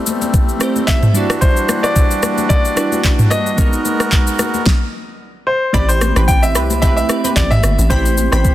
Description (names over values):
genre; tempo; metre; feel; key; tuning
amapiano; 111 BPM; 4/4; swing 55% on 16ths; A dorian; A4 = 440 Hz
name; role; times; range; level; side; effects
glassy digital keys; accompaniment; 0.0-8.5 s; G3 to D5; -21 LUFS; right 2 dB; chorus
accordion; sustained chords; 0.0-4.7 s; E3 to A#4; -22 LUFS; right 2 dB; sidechain pumping
smooth R&B drum kit; drums; 0.1-8.5 s; handclaps, kick drum, rim click, shaker, snare drum, toms; -15 LUFS; equal; none
congas; percussion; 0.1-8.3 s; none; -25 LUFS; left 8 dB; none
warm grand piano; melody; 0.9-8.5 s; C5 to G5; -19 LUFS; left 1 dB; tape echo
punchy chord stab; stabs; 5.7-8.5 s; C4 to B5; -24 LUFS; right 2 dB; chorus, phaser, tape echo
hollow log drum bass; bass; 5.7-8.5 s; G1 to C2; -16 LUFS; equal; none
room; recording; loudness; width
little or no reverb; dense, heavily limited modern master; -12 LUFS; side -14 dB against mid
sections
0.0-5.7 A section; 5.7-8.5 B section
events
stop 4.7-5.7; drop 5.7-8.5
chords
0.0 Am9; 1.1 Em9; 3.6 G#m9; 5.7 Am9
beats
0.34 0.88 | 1.42 1.96 2.50 3.04 | 3.58 4.12 4.66 5.20 | 5.74 6.28 6.83 7.37 | 7.91 8.45